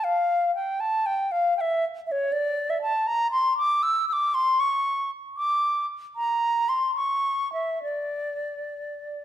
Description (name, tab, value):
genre	classical, baroque-style fantasia for unaccompanied flute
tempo	66-81 BPM (dotted quarters)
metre	6/8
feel	rubato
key	F major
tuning	A4 = 441 Hz
part	bright wooden flute	solo	0.0-9.2 s	Db5 to E6	-23 LUFS	equal	none
room	wet recital hall reverb, RT60 1.4 s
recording	none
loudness	-23 LUFS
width	side -11 dB against mid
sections	0.0-9.2 A section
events	none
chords	none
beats	| 0.03 0.80 | 1.57 2.32 | 3.08 3.84 | 4.60 5.38 | 6.17 6.98 | 7.85 8.73